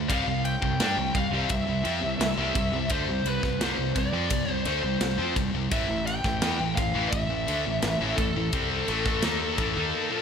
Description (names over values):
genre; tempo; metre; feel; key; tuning
heavy metal; 85 BPM; 4/4; straight; unclear; A4 = 440 Hz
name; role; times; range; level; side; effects
distorted electric guitar; riff; 0.0-10.2 s; A2 to D#4; -32 LUFS; right 11 dB; distortion
high-gain distorted guitar; riff; 0.0-10.2 s; A2 to D#4; -30 LUFS; left 12 dB; distortion
fuzz fingered electric bass; bass; 0.0-9.9 s; A1 to G2; -32 LUFS; equal; overdrive
high-gain lead guitar; melody; 0.1-10.2 s; A4 to G5; -30 LUFS; left 1 dB; distortion
tight metal drum kit; drums; 0.1-9.7 s; kick drum, ride cymbal, snare drum; -31 LUFS; equal; gated reverb
room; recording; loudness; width
light reverb, studio reverb; bright 1980s-style digital production; -24 LUFS; side -7 dB against mid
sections
0.0-10.2 A section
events
none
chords
0.1 C5; 5.7 Am